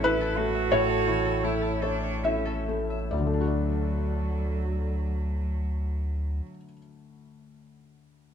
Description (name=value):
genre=neoclassical piano and strings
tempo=66-88 BPM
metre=3/4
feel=rubato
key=D major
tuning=A4 = 440 Hz
part: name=warm cello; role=second line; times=0.0-6.4 s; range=F#3 to F#4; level=-32 LUFS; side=right 8 dB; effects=none
part: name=felt-muted upright piano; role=accompaniment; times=0.0-8.3 s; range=D2 to E5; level=-28 LUFS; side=left 2 dB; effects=none
part: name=dark analog pad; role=sustained chords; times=0.0-6.4 s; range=E4 to D5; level=-38 LUFS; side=right 1 dB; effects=chorus
part: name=concert harp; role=arpeggios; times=0.0-6.4 s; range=A4 to A5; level=-35 LUFS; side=left 2 dB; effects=tape echo
part: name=warm sub bass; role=bass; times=0.0-6.4 s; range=A1 to D2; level=-30 LUFS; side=equal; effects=none
room=little or no reverb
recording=close, detailed microphones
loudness=-25 LUFS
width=side -8 dB against mid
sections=0.0-3.1 A section; 3.1-8.3 B section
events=slowing down 0.0-3.1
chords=0.0 A; 3.1 D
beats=0.03 | 0.72 1.44 2.24 | 3.12 3.99 4.86 | 5.74 6.62 7.50